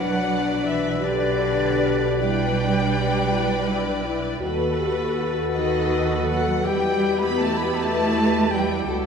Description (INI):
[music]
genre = classical, slow romantic movement for symphony orchestra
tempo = 54 BPM (dotted quarters)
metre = 12/8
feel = rubato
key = G major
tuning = A4 = 440 Hz
[part]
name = clear symphonic violin section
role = melody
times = 0.0-9.1 s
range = A4 to D5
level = -30 LUFS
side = left 5 dB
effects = none
[part]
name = bright concert flute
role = second line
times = 0.0-8.9 s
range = D5 to B5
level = -30 LUFS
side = left 1 dB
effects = none
[part]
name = clear clarinet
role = second line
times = 0.0-9.1 s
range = G4 to B4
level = -32 LUFS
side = equal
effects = none
[part]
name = warm symphonic violin section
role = second line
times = 0.0-8.9 s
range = D5 to B5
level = -30 LUFS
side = left 2 dB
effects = none
[part]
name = mellow bassoon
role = accompaniment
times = 0.0-9.1 s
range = B2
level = -33 LUFS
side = right 2 dB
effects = none
[part]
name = rich studio viola section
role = accompaniment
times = 0.0-9.1 s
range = D4 to B4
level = -30 LUFS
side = right 2 dB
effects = none
[part]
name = mellow French horn section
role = sustained chords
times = 0.0-9.1 s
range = D4 to G4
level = -26 LUFS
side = left 5 dB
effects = none
[part]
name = warm symphonic cello section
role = bass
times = 0.0-8.9 s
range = D3 to B3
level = -26 LUFS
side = right 2 dB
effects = none
[part]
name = warm symphonic double bass section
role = bass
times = 0.0-9.1 s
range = B1 to E2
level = -28 LUFS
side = right 5 dB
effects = none
[sound]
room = wet scoring stage reverb, RT60 2.0 s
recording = minimal, uncompressed stereo recording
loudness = -20 LUFS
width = side -6 dB against mid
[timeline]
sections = 0.0-9.1 A section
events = none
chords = 0.0 G/B; 4.4 B7/D#; 6.7 Em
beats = 1.03 2.22 3.33 | 4.42 5.53 6.65 7.77 | 8.88